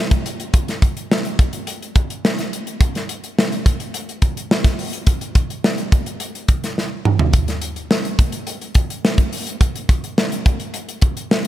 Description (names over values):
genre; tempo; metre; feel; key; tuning
pop; 106 BPM; 4/4; straight; none; none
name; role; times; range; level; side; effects
modern studio drum kit; drums; 0.1-11.5 s; hi-hat, kick drum, snare drum, toms; -17 LUFS; equal; none
room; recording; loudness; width
light reverb; none; -17 LUFS; side -13 dB against mid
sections
0.0-11.5 A section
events
drum fill 6.8-7.3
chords
none